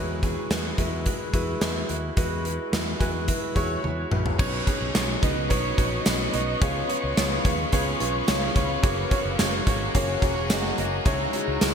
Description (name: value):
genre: 1980s-style pop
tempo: 108 BPM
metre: 4/4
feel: straight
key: unclear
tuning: A4 = 437 Hz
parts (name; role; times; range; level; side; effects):
- clear concert grand piano; accompaniment; 0.0-11.7 s; G#3 to G#5; -27 LUFS; equal; wide subtle chorus
- fretless electric bass; bass; 0.0-11.7 s; E1 to E2; -31 LUFS; equal; none
- gated 80s drum kit; drums; 0.2-11.7 s; crash cymbal, hi-hat, kick drum, snare drum, tambourine, toms; -25 LUFS; equal; gated reverb
- scooped high-gain guitar; accompaniment; 4.4-11.7 s; B2 to F#4; -34 LUFS; left 2 dB; distortion, wide subtle chorus
- granular cloud pad; sustained chords; 5.2-11.7 s; G#4 to D#6; -32 LUFS; equal; built-in reverb, lush chorus
room: moderate lush hall reverb, RT60 2.9 s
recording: bright 1980s-style digital production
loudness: -22 LUFS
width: side -7 dB against mid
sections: 0.0-4.4 A section; 4.4-11.7 B section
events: grand piano fill 2.7-4.4; drum fill 3.8-4.4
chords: 0.0 Eadd9; 4.4 Badd9; 6.6 C#7; 8.8 F#add9; 11.1 C#madd9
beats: 0.50 1.06 1.62 | 2.17 2.73 3.28 3.84 | 4.39 4.95 5.50 6.06 | 6.62 7.17 7.73 8.28 | 8.84 9.39 9.95 10.50 | 11.06 11.62